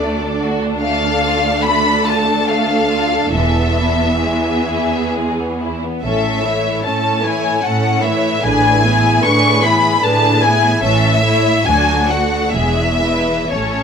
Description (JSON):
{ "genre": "classical, slow romantic movement for string orchestra", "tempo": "58-76 BPM", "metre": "3/4", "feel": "rubato", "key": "unclear", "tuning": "A4 = 440 Hz", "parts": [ { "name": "clear studio violin section", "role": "melody", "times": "0.0-13.8 s", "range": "C#5 to C#6", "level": "-16 LUFS", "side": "left 3 dB", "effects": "none" }, { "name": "rich studio violin section", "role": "second line", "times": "0.0-13.8 s", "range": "G#3 to C#5", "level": "-20 LUFS", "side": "left 2 dB", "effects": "none" }, { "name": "rich studio viola section", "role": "accompaniment", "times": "0.0-13.8 s", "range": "D3 to F#4", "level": "-20 LUFS", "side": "right 2 dB", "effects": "none" }, { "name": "rich studio cello section", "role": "bass", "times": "0.0-13.8 s", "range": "D2 to A2", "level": "-20 LUFS", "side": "right 2 dB", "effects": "none" }, { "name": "rich studio double bass section", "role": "bass", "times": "3.3-13.8 s", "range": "E1 to D2", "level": "-23 LUFS", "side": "right 3 dB", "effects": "none" } ], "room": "moderate large studio reverb, RT60 1.1 s", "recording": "minimal, uncompressed stereo recording", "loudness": "-13 LUFS", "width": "side -6 dB against mid", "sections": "0.0-13.8 A section", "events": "none", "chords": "0.0 D; 3.3 E; 6.0 A; 8.4 E7/A; 10.8 A; 11.7 D; 12.5 E" }